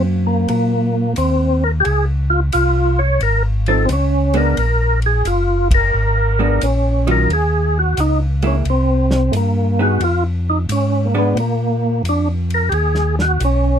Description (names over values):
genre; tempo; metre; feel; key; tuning
soul jazz organ trio; 88 BPM; 4/4; swing 67% on 8ths; unclear; A4 = 439 Hz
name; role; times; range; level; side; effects
percussive tonewheel organ; melody; 0.0-13.8 s; A3 to Db5; -18 LUFS; equal; slow rotary speaker, overdrive, chorus vibrato
vintage hollow-body jazz guitar; accompaniment; 0.0-11.3 s; Eb3 to Ab4; -20 LUFS; right 3 dB; none
mellow tonewheel organ; bass; 0.0-13.8 s; Gb1 to Bb2; -17 LUFS; equal; chorus vibrato, slow rotary speaker
warm soul drum kit; drums; 0.5-13.6 s; hi-hat, kick drum, ride cymbal, snare drum; -25 LUFS; equal; none
room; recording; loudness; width
light reverb; minimal, uncompressed stereo recording; -14 LUFS; side -8 dB against mid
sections
0.0-13.8 A section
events
band accent 5.6-5.9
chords
0.0 Ab9 (rootless); 1.8 Dbmaj7; 4.6 Bb7(no3); 7.3 Eb5; 8.7 C5; 10.0 Fdim; 11.4 Bb5; 12.7 Ebm7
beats
0.48 1.17 | 1.85 2.53 3.21 3.89 | 4.57 5.25 5.93 6.61 | 7.29 7.97 8.65 9.33 | 10.01 10.69 11.37 12.05 | 12.73 13.41